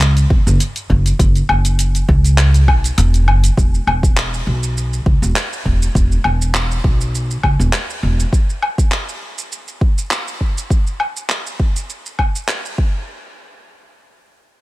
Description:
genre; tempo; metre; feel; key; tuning
organic downtempo; 101 BPM; 4/4; swing 54% on 16ths; unclear; A4 = 440 Hz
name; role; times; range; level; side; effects
upright bass; bass; 0.0-8.2 s; E1 to C#2; -14 LUFS; equal; none
deep house drum kit; drums; 0.0-12.8 s; handclaps, hi-hat, shaker, woodblock; -21 LUFS; equal; overdrive
electronic kick drum; drums; 0.3-12.9 s; none; -15 LUFS; equal; overdrive
room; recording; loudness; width
little or no reverb; none; -14 LUFS; side -18 dB against mid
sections
0.0-3.6 A section; 3.6-13.1 B section; 13.1-14.6 C section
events
none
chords
none

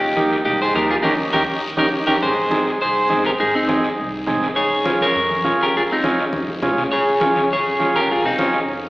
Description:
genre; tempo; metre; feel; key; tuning
latin, cumbia; 204 BPM; 4/4; straight; Ab major; A4 = 440 Hz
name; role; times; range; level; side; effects
electric guitar at the edge of break-up; melody; 0.0-8.5 s; C4 to Db5; -18 LUFS; equal; spring reverb
upright bass; bass; 0.0-8.9 s; Ab1 to G2; -36 LUFS; equal; none
combo organ; accompaniment; 0.2-8.6 s; Bb3 to Ab4; -21 LUFS; right 1 dB; spring reverb
congas; percussion; 0.2-8.8 s; none; -29 LUFS; equal; none
guiro; percussion; 0.2-8.9 s; none; -31 LUFS; left 2 dB; none
room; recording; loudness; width
wet recital hall reverb, RT60 1.8 s; recorded in a church or concert hall, AM radio sound; -16 LUFS; side -20 dB against mid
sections
0.0-2.2 A section; 2.2-8.9 A section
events
band accent 1.0-2.2; drum fill 6.3-6.9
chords
0.0 Eb7; 2.2 Ab; 4.6 Db

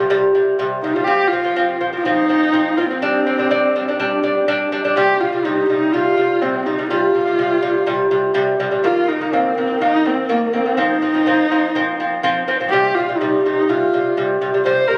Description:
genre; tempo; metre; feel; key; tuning
mongolian traditional, Mongolian folk; 124 BPM; 4/4; straight; C minor; A4 = 440 Hz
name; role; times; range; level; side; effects
lute; arpeggios; 0.0-15.0 s; C3 to D4; -20 LUFS; equal; none
warm horsehead fiddle; melody; 0.8-15.0 s; Bb3 to C5; -21 LUFS; equal; none
room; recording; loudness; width
moderate huge ambient reverb, RT60 8.1 s; recorded on a phone in the room, club reverb; -17 LUFS; mono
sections
0.0-5.0 A section; 5.0-15.0 B section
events
none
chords
0.0 C5; 1.1 F5; 3.0 G5; 5.0 C5; 8.8 Eb5; 10.8 F5; 12.7 C5

